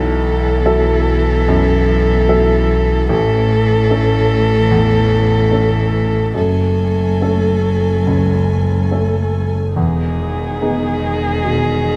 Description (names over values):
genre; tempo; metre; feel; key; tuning
neoclassical piano and strings; 72 BPM; 4/4; rubato; E major; A4 = 440 Hz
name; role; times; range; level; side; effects
warm violin; melody; 0.0-12.0 s; G#4 to A4; -21 LUFS; equal; none
warm cello; second line; 0.0-12.0 s; D#3 to F#3; -25 LUFS; equal; none
warm baby grand piano; accompaniment; 0.0-12.0 s; A1 to A4; -22 LUFS; equal; none
rich chamber string section; sustained chords; 0.0-12.0 s; A3 to G#5; -32 LUFS; equal; none
warm double bass; bass; 0.0-12.0 s; E1 to B1; -19 LUFS; equal; none
room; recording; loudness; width
light reverb; dark, warm production; -15 LUFS; mono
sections
0.0-12.0 A section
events
none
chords
0.0 B7sus4; 3.1 A; 6.4 F#madd9; 9.8 Emaj7